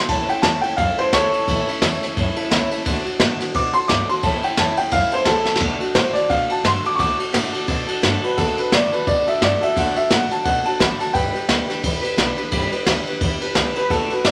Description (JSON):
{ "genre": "rockabilly", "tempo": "174 BPM", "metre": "4/4", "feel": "swing 58% on 8ths", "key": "D major", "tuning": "A4 = 440 Hz", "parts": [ { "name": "clear upright piano", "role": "melody", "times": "0.0-14.3 s", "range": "A4 to D6", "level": "-22 LUFS", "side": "equal", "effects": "none" }, { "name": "picked acoustic archtop guitar", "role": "accompaniment", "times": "0.0-14.3 s", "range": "A2 to B4", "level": "-28 LUFS", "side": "equal", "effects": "none" }, { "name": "upright bass", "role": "bass", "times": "0.1-14.3 s", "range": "G1 to B2", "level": "-30 LUFS", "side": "equal", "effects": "none" }, { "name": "jazz brush drum kit", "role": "drums", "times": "0.1-14.3 s", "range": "crash cymbal, kick drum, ride cymbal, snare drum", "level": "-23 LUFS", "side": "equal", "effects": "none" } ], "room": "moderate large studio reverb, RT60 1.1 s", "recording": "none", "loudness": "-19 LUFS", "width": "mono", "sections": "0.0-5.6 A section; 5.6-14.3 B section", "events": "drum fill 5.4; upright piano solo 5.6-14.3", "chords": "0.1 A; 2.9 D; 4.2 A; 5.6 D; 11.1 G" }